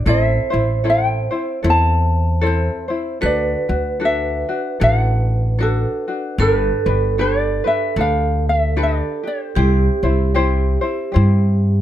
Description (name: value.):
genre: Hawaiian.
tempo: 76 BPM.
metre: 4/4.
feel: swing 59% on 8ths.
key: C major.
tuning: A4 = 443 Hz.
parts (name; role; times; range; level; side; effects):
ukulele; melody; 0.0-11.8 s; A4 to A5; -21 LUFS; left 1 dB; plate reverb.
tenor ukulele; accompaniment; 0.0-11.8 s; C4 to C5; -23 LUFS; left 4 dB; none.
upright bass; bass; 0.0-11.8 s; G1 to G2; -17 LUFS; equal; none.
vibraphone with medium hard mallets; second line; 0.1-11.8 s; G4 to C5; -24 LUFS; right 6 dB; none.
room: light reverb.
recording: close, detailed microphones.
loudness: -15 LUFS.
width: side -12 dB against mid.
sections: 0.0-11.8 A section.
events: none.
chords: 0.1 Am; 3.2 D; 6.4 Gadd9; 9.6 C.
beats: | 0.06 0.85 1.65 2.44 | 3.23 4.02 4.81 5.60 | 6.39 7.18 7.97 8.77 | 9.56 10.35 11.14.